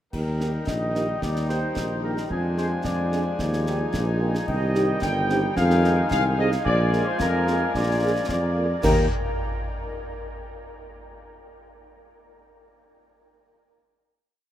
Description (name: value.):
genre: military-style march for wind band.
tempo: 110 BPM.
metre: 2/4.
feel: straight.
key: Eb major.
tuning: A4 = 440 Hz.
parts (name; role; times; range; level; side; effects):
dark trumpet section; melody; 0.1-9.1 s; Ab4 to G5; -28 LUFS; equal; none.
clear woodwind section; second line; 0.1-9.1 s; D4 to Bb5; -32 LUFS; left 2 dB; none.
warm trombone section; sustained chords; 0.1-9.1 s; Eb3 to Bb3; -31 LUFS; left 1 dB; none.
mellow tuba; bass; 0.1-9.1 s; G1 to F2; -24 LUFS; equal; none.
clash cymbals, concert bass drum and concert snare drum; drums; 0.1-9.1 s; none; -32 LUFS; equal; none.
mellow French horn section; accompaniment; 0.4-9.1 s; Ab3 to Bb4; -31 LUFS; right 1 dB; none.
room: moderate huge ambient reverb, RT60 8.9 s.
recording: in a vast, echoing space.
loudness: -21 LUFS.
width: side -12 dB against mid.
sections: 0.1-8.8 A section; 8.8-9.9 final chord.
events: none.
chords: 0.1 Eb; 2.3 Ddim/F; 3.4 Eb; 4.5 Cm; 5.6 Fm7; 6.7 Bb7; 8.8 Eb5.